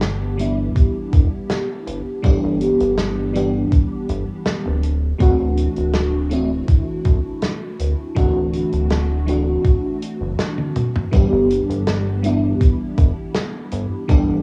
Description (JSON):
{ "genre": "vaporwave", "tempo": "81 BPM", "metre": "4/4", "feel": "straight", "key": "G major", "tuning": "A4 = 438 Hz", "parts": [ { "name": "FM electric piano with soft pad layer", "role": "accompaniment", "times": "0.0-14.4 s", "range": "E3 to G4", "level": "-23 LUFS", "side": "equal", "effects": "phaser, ensemble chorus, vintage 12-bit sampler grit, cassette tape, tape echo" }, { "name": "chorused synth bass", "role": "bass", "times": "0.0-14.4 s", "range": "D1 to C2", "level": "-24 LUFS", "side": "equal", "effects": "none" }, { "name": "natural country drum kit", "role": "drums", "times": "0.0-14.2 s", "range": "hi-hat, snare drum, toms", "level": "-27 LUFS", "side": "equal", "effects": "cassette tape" }, { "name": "electronic kick drum", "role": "drums", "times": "0.8-14.2 s", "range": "none", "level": "-17 LUFS", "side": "equal", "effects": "overdrive, cassette tape" } ], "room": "light reverb, small room ambience", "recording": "home recording on cassette", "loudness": "-19 LUFS", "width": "mono", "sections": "0.0-11.1 A section; 11.1-14.4 B section", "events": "drum fill 10.6-11.1", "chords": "0.0 G6; 4.8 D9; 11.1 G6", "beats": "0.02 0.76 1.50 | 2.24 2.98 3.72 4.46 | 5.20 5.94 6.68 7.43 | 8.17 8.91 9.65 10.39 | 11.13 11.87 12.61 13.35 | 14.09" }